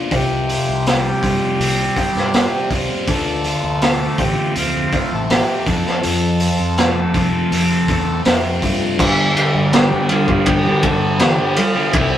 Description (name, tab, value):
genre	psychedelic rock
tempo	81 BPM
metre	4/4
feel	straight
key	unclear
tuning	A4 = 438 Hz
part	fuzz guitar	riff	0.0-12.2 s	F2 to F4	-18 LUFS	equal	distortion, phaser
part	fingered electric bass	bass	0.1-12.2 s	A1 to G3	-24 LUFS	equal	none
part	crunchy breakbeat drum kit	drums	0.1-12.1 s	crash cymbal, hi-hat, kick drum, ride cymbal, snare drum	-18 LUFS	equal	none
part	combo organ	melody	0.2-12.2 s	E4 to A4	-23 LUFS	equal	none
room	moderate studio reverb, RT60 0.6 s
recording	rough rehearsal-room recording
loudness	-14 LUFS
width	side -11 dB against mid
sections	0.0-9.0 A section; 9.0-12.2 B section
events	none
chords	0.1 Csus4; 3.1 Dm7; 5.7 F; 9.0 G5